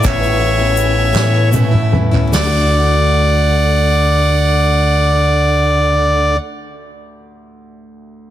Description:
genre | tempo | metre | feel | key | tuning
indie folk with a building arrangement | 48-56 BPM (dotted quarters) | 6/8 | straight | D major | A4 = 440 Hz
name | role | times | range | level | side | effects
accordion | melody | 0.0-6.4 s | C#5 to D5 | -16 LUFS | equal | none
clear fiddle | second line | 0.0-6.4 s | E5 to F#5 | -23 LUFS | right 7 dB | none
bright grand piano | accompaniment | 0.0-8.3 s | A1 to F#5 | -29 LUFS | right 3 dB | none
picked plugged-in steel-string acoustic guitar | accompaniment | 0.0-6.5 s | A2 to F#4 | -24 LUFS | left 6 dB | none
mellow tonewheel organ | sustained chords | 0.0-6.4 s | D3 to A5 | -24 LUFS | right 1 dB | slow rotary speaker
fingered electric bass | bass | 0.0-6.4 s | A1 to A2 | -15 LUFS | equal | none
soft-mallet drum kit | drums | 0.0-2.5 s | hi-hat, kick drum, ride cymbal, snare drum, toms | -18 LUFS | equal | none
egg shaker | percussion | 0.0-2.7 s | none | -26 LUFS | left 16 dB | none
group handclap | percussion | 0.1-2.7 s | none | -27 LUFS | right 15 dB | none
room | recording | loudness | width
light reverb | heavily compressed radio sound | -11 LUFS | side -12 dB against mid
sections
0.0-2.3 A section; 2.3-7.3 B section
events
slowing down 0.0-2.3; drum fill 1.1-2.3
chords
0.0 Aadd9; 2.3 D

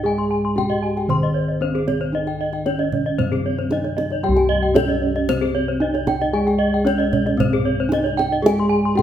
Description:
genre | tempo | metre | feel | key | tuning
Balinese gamelan | 114 BPM | 4/4 | straight | C pelog | A4 = 440 Hz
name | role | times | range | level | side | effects
gamelan-type bronze metallophone | melody | 0.0-9.0 s | C4 to C5 | -24 LUFS | right 1 dB | none
gamelan-type bronze metallophone | accompaniment | 0.0-9.0 s | C3 to C4 | -26 LUFS | equal | none
gamelan-type bronze metallophone | arpeggios | 0.0-9.0 s | Ab4-20c to C6 | -25 LUFS | left 5 dB | none
gamelan-type bossed gongs | bass | 0.0-9.0 s | C2 to Ab4-20c | -24 LUFS | left 1 dB | none
kendang | percussion | 0.2-9.0 s | none | -23 LUFS | right 2 dB | none
gamelan-type bronze metallophone | arpeggios | 0.3-8.8 s | Ab4-20c to Ab5-20c | -26 LUFS | right 5 dB | none
room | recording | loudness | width
wet large studio reverb, RT60 1.1 s | band playing live in one room | -17 LUFS | side -10 dB against mid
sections
0.0-9.0 A section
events
none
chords
none

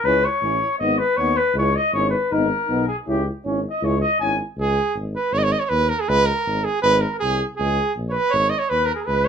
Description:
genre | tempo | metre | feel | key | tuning
balkan folk | 160 BPM | 2/4 | straight | unclear | A4 = 441 Hz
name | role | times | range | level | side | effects
warm flugelhorn | second line | 0.0-4.4, 6.8-9.3 s | G4 to G#5 | -22 LUFS | left 3 dB | none
dark tuba | bass | 0.0-9.3 s | G#1 to D#2 | -25 LUFS | left 1 dB | none
warm euphonium | accompaniment | 0.1-4.4 s | D#4 to E4 | -26 LUFS | left 1 dB | none
warm trombone | accompaniment | 0.1-4.4 s | B3 to C#4 | -28 LUFS | right 2 dB | none
clear cornet | melody | 4.6-9.3 s | G#4 to D#5 | -19 LUFS | right 3 dB | none
room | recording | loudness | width
moderate small room reverb, RT60 0.5 s | band playing live in one room | -18 LUFS | side -7 dB against mid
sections
0.0-4.6 A section; 4.6-9.3 B section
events
flugelhorn solo 0.0-4.6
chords
0.0 C#m; 0.8 G#m; 1.6 C#m; 2.3 G#m; 3.1 C#m; 4.6 C#5; 5.3 G#5; 6.1 C#5; 6.8 G#madd9; 7.6 C#5; 8.3 G#5

